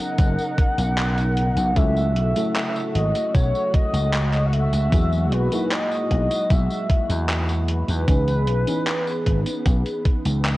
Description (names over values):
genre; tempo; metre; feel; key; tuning
vaporwave; 76 BPM; 4/4; straight; unclear; A4 = 440 Hz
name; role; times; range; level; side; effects
warm velvety synth lead; melody; 0.0-10.4 s; B4 to F#5; -26 LUFS; equal; chorus, tape echo
FM electric piano with soft pad layer; accompaniment; 0.0-10.6 s; E3 to A#4; -28 LUFS; equal; analog chorus
dark studio string section; sustained chords; 0.0-10.6 s; A#2 to A#4; -33 LUFS; left 1 dB; vintage 12-bit sampler grit
vintage slap bass; bass; 0.2-10.6 s; F#1 to E2; -21 LUFS; equal; tube saturation
electronic kick drum; drums; 0.2-10.2 s; none; -19 LUFS; equal; none
gated 80s digital drum machine; drums; 0.2-10.6 s; handclaps, hi-hat, tambourine; -29 LUFS; equal; gated reverb
room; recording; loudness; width
little or no reverb; worn, warbling old tape, cassette tape, warbly pitch drift; -19 LUFS; side -18 dB against mid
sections
0.0-10.6 A section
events
none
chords
0.0 Bmaj9; 1.8 A6; 4.9 Emaj9#11; 8.1 C#m9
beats
0.19 0.98 | 1.77 2.56 3.35 4.14 | 4.92 5.71 6.50 7.29 | 8.08 8.87 9.66 10.45